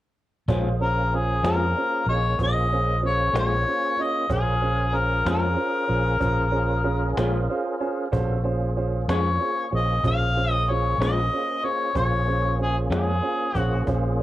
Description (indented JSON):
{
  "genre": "slow blues",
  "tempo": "63 BPM (dotted quarters)",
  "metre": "12/8",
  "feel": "straight",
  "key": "Bb minor",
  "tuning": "A4 = 442 Hz",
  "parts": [
    { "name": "electric guitar through a small old amp", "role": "accompaniment", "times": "0.5-13.1 s", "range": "Bb2 to Db4", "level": "-30 LUFS", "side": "left 4 dB", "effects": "harmonic tremolo" },
    { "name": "warm concert grand piano", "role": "accompaniment", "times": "0.5-14.2 s", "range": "Db4 to Ab5", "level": "-29 LUFS", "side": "right 4 dB", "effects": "none" },
    { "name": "tonewheel organ", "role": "sustained chords", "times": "0.5-14.2 s", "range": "Bb3 to Bb4", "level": "-32 LUFS", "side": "equal", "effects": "slow rotary speaker, overdrive, chorus vibrato" },
    { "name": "fingered electric bass", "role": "bass", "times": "0.5-14.2 s", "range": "Bb1 to F2", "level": "-24 LUFS", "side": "equal", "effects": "none" },
    { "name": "cajon", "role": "drums", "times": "0.5-14.0 s", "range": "none", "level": "-32 LUFS", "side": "equal", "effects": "none" },
    { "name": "warm harmonica", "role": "melody", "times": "0.8-13.8 s", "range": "Ab4 to F5", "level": "-24 LUFS", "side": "left 2 dB", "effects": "overdrive" }
  ],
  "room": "light reverb, small room ambience",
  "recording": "worn, warbling old tape, cassette tape, warbly pitch drift",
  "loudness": "-21 LUFS",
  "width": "side -14 dB against mid",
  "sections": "0.5-14.2 A section",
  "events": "grand piano fill 7.2-8.1",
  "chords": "0.5 Bbm7"
}